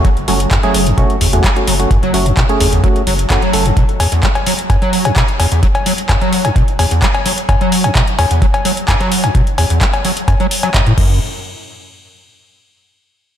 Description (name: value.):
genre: acid house.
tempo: 129 BPM.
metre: 4/4.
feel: straight.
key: unclear.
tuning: A4 = 440 Hz.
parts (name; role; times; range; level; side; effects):
overdriven acid bass; riff; 0.0-11.2 s; E2 to F#3; -16 LUFS; equal; tube saturation, ensemble chorus, sidechain pumping, ping-pong delay.
percussive organ stab; stabs; 0.0-3.7 s; A3 to A4; -18 LUFS; right 1 dB; chorus, ping-pong delay.
booming analog drum machine; drums; 0.0-11.1 s; cowbell, crash cymbal, handclaps, hi-hat; -18 LUFS; left 2 dB; none.
electronic kick drum; drums; 0.0-11.1 s; none; -15 LUFS; equal; overdrive.
saturated sub bass; bass; 0.2-3.7, 11.0-11.2 s; F#1; -17 LUFS; equal; sidechain pumping.
room: moderate lush hall reverb, RT60 1.6 s, digital ambience.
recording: dreamy mix soaked in reverb.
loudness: -11 LUFS.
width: side -10 dB against mid.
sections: 0.0-11.2 A section; 11.2-13.1 B section.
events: none.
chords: 0.0 F#m; 11.0 N.C..